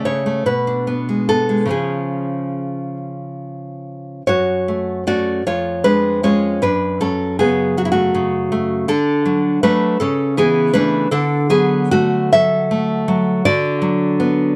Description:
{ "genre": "romantic piece for solo classical guitar", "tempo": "45-55 BPM (dotted quarters)", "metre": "6/8", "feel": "rubato", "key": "F# minor", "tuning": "A4 = 438 Hz", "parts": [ { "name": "nylon-string guitar", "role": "solo", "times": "0.0-14.6 s", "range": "E#2 to E5", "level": "-18 LUFS", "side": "equal", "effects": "none" } ], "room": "light reverb", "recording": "dry, close 1970s-style studio recording", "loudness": "-17 LUFS", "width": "mono", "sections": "0.0-4.3 A section; 4.3-14.6 B section", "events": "none", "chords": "0.5 G#dim/B; 1.7 C#; 4.3 F#m; 5.5 C#/E#; 6.6 F#m; 8.9 D; 10.0 A/C#; 11.1 D; 13.4 Bm/D" }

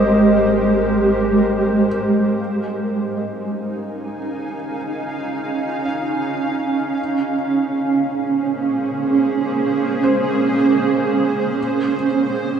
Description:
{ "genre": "ambient", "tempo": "free time", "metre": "none", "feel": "none", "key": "unclear", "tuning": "A4 = 440 Hz", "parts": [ { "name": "granular cloud pad", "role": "sustained chords", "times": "0.0-12.6 s", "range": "Ab3 to Ab5", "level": "-17 LUFS", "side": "right 2 dB", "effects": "built-in reverb" }, { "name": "felt-muted upright piano", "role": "arpeggios", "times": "0.0-12.6 s", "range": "C5 to Ab5", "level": "-28 LUFS", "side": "left 3 dB", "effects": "tape echo" }, { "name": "round analog bass", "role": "bass", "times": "0.0-2.4 s", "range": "Ab1", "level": "-31 LUFS", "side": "right 1 dB", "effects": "tube saturation" } ], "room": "wet cathedral reverb, RT60 5.4 s", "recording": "in a vast, echoing space, small room ambience", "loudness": "-17 LUFS", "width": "side -8 dB against mid", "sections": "0.0-2.4 A section; 2.4-12.6 B section", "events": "filter sweep on ambient pad 0.0-2.4; fade-in on felt piano 2.4-12.6", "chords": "0.0 Abmaj9; 2.4 Eb9sus4; 7.0 Bbm9; 11.6 Abmaj9" }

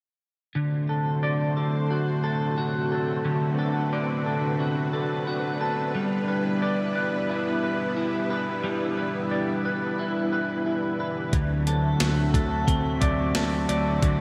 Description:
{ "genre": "dream pop", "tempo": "89 BPM", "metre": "4/4", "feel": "straight", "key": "D mixolydian", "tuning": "A4 = 441 Hz", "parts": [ { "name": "string machine, cellos", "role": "sustained chords", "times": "0.5-14.2 s", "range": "D3 to C5", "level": "-31 LUFS", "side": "equal", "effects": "ensemble chorus" }, { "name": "electric guitar at the edge of break-up", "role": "arpeggios", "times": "0.6-14.2 s", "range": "D3 to D5", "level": "-28 LUFS", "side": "equal", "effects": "lush chorus, digital delay" }, { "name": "vintage muted picked electric bass", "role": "bass", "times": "11.3-14.2 s", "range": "D2", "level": "-32 LUFS", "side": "equal", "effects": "none" }, { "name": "clean 12-bit digital drum machine", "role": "drums", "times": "11.3-14.2 s", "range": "hi-hat, kick drum, snare drum", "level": "-28 LUFS", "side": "equal", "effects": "gated reverb" } ], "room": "wet lush hall reverb, RT60 2.9 s", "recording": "bright 1980s-style digital production", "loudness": "-26 LUFS", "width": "mono", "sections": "0.5-11.3 A section; 11.3-14.2 B section", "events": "none", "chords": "0.5 D7; 5.9 G6; 11.3 D7" }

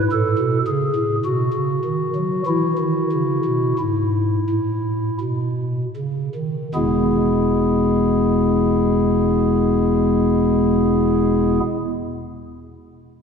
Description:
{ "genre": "classical, chorale-style piece for pipe organ", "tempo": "38-56 BPM", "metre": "3/4", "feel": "straight", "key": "E major", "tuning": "A4 = 440 Hz", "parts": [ { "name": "pipe organ, stopped flute", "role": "solo", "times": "0.0-11.6 s", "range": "E1 to A4", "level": "-17 LUFS", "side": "equal", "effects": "none" } ], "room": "wet church reverb, RT60 2.8 s", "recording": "none", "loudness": "-17 LUFS", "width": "side -6 dB against mid", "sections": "0.0-6.7 A section; 6.7-11.5 B section", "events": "slowing down 0.0-6.7", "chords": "0.1 A; 1.2 B; 2.5 E" }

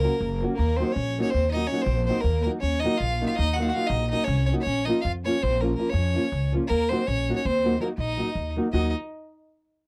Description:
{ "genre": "balkan folk", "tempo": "324 BPM (eighths)", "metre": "11/8", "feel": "straight", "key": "unclear", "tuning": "A4 = 440 Hz", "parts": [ { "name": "clear fiddle", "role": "melody", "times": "0.0-8.9 s", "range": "Bb4 to Gb5", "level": "-30 LUFS", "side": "equal", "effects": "none" }, { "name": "rich violin", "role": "second line", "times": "0.0-8.9 s", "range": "Bb3 to Gb4", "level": "-35 LUFS", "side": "equal", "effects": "none" }, { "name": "nylon-string guitar", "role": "accompaniment", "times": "0.0-8.9 s", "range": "F3 to Gb4", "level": "-30 LUFS", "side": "equal", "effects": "none" }, { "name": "upright bass", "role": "bass", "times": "0.0-8.9 s", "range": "Gb1 to F2", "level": "-28 LUFS", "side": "equal", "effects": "none" } ], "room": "little or no reverb", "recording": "dry, close 1970s-style studio recording", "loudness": "-25 LUFS", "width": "mono", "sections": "0.0-8.7 A section; 8.7-9.9 B section", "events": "none", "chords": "0.0 Gb; 0.6 Ebm; 4.7 Bbm; 6.7 Ebm" }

